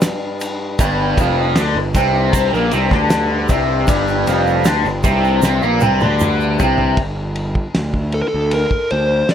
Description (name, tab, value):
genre	psychedelic rock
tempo	78 BPM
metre	4/4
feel	straight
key	G minor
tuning	A4 = 442 Hz
part	hand-pumped harmonium	drone	0.0-7.1 s	G2	-26 LUFS	left 2 dB	stereo widening
part	cloth-damped thuddy drum kit	drums	0.0-9.3 s	kick drum, ride cymbal, snare drum, toms	-20 LUFS	equal	none
part	egg shaker	percussion	0.0-6.8 s	none	-33 LUFS	right 18 dB	none
part	cranked stack guitar	riff	0.8-7.0 s	F2 to D4	-16 LUFS	left 1 dB	overdrive, phaser
part	fuzz picked electric bass	bass	0.8-9.2 s	F1 to D2	-19 LUFS	equal	overdrive
part	fuzz lead guitar	melody	8.1-9.3 s	A4 to D5	-17 LUFS	left 1 dB	distortion, analog delay
room	light reverb, small room reverb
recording	none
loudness	-14 LUFS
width	side -9 dB against mid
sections	0.0-7.0 A section; 7.0-9.3 B section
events	drum fill 5.4-7.0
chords	0.0 Gm; 7.0 G5